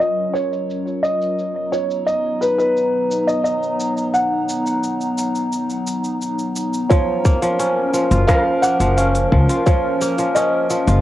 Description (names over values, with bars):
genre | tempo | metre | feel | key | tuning
folktronica | 87 BPM | 4/4 | straight | F# major | A4 = 440 Hz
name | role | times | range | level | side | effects
felt-muted upright piano | melody | 0.0-11.0 s | B4 to F#5 | -20 LUFS | equal | cassette tape, tape echo
warbly tape-like pad | sustained chords | 0.0-11.0 s | E#3 to A#5 | -23 LUFS | equal | chorus, built-in reverb, cassette tape
organic electronic drum kit | drums | 0.0-11.0 s | hi-hat, rim click, shaker | -27 LUFS | equal | cassette tape
kora | arpeggios | 6.9-11.0 s | E#3 to E#4 | -19 LUFS | equal | cassette tape, tape echo
electronic kick drum | drums | 6.9-9.8 s | none | -16 LUFS | equal | cassette tape
upright bass | bass | 8.1-11.0 s | F#1 to C#2 | -16 LUFS | equal | none
room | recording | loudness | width
moderate small room reverb, RT60 0.5 s | home recording on cassette, low-pass filter | -16 LUFS | side -14 dB against mid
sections
0.0-6.9 A section; 6.9-11.0 B section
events
filter sweep on ambient pad 0.0-6.9; filter sweep 0.0-6.9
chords
0.0 F#maj7; 1.4 Bmaj7; 6.9 F#maj7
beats
0.01 0.70 | 1.39 2.08 2.77 3.46 | 4.15 4.84 5.53 6.22 | 6.91 7.60 8.29 8.98 | 9.67 10.36